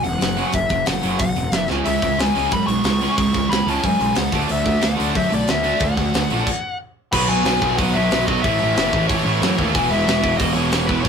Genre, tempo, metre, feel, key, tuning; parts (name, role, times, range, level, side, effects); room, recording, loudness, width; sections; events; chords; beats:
punk rock; 182 BPM; 4/4; straight; E major; A4 = 437 Hz
dark smooth lead guitar; melody; 0.0-11.1 s; B4 to C#6; -22 LUFS; left 3 dB; overdrive
crunchy overdriven guitar; riff; 0.0-11.1 s; E2 to D4; -23 LUFS; right 6 dB
sludgy distorted guitar; riff; 0.0-11.1 s; E2 to D4; -27 LUFS; left 7 dB; overdrive
fuzz picked electric bass; bass; 0.0-11.1 s; E1 to F#2; -23 LUFS; equal; overdrive
tight metal drum kit; drums; 0.0-11.1 s; crash cymbal, hi-hat, kick drum, snare drum; -24 LUFS; equal
heavy high-gain guitar; riff; 1.9-11.1 s; A2 to E4; -28 LUFS; right 2 dB; distortion
light reverb; rough rehearsal-room recording; -16 LUFS; side -6 dB against mid
0.0-7.1 A section; 7.1-11.1 B section
drum fill 1.7; stop 6.5-7.1
0.0 F#5; 1.7 C#m; 4.3 D; 7.1 B; 8.4 A; 9.7 E
0.21 | 0.54 0.87 1.20 1.53 | 1.86 2.19 2.52 2.85 | 3.18 3.51 3.84 4.17 | 4.50 4.83 5.16 5.48 | 5.81 6.14 6.47 6.80 | 7.13 7.46 7.78 8.11 | 8.44 8.77 9.09 9.42 | 9.75 10.07 10.40 10.73 | 11.05